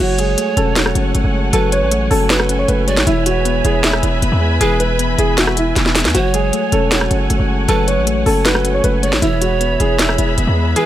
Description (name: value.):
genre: hip hop, trap.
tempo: 156 BPM.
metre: 4/4.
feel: half-time.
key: F# minor.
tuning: A4 = 440 Hz.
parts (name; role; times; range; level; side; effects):
dark grand piano; melody; 0.0-10.9 s; E4 to C#5; -20 LUFS; equal; none.
breathy pan flute; second line; 0.0-10.9 s; A4 to D5; -23 LUFS; right 8 dB; tape echo.
soft electric-piano-like synth keys; accompaniment; 0.0-10.9 s; E3 to E5; -21 LUFS; left 3 dB; chorus.
warm studio string section; sustained chords; 0.0-10.9 s; G#4 to B5; -24 LUFS; right 1 dB; none.
hard-hitting 808-style bass; bass; 0.0-10.8 s; E1 to E2; -18 LUFS; equal; none.
trap drum kit; drums; 0.2-10.9 s; hi-hat, rim click, snare drum; -18 LUFS; equal; none.
room: studio ambience.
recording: none.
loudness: -13 LUFS.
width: side -12 dB against mid.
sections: 0.0-10.9 A section.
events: drum fill 5.8-6.1.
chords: 0.0 F#madd9; 3.1 E; 6.1 F#madd9; 9.2 E.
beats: 0.38 0.76 1.15 | 1.53 1.92 2.30 2.69 | 3.07 3.45 3.84 4.22 | 4.61 4.99 5.38 5.76 | 6.15 6.53 6.92 7.30 | 7.68 8.07 8.45 8.84 | 9.22 9.61 9.99 10.38 | 10.76.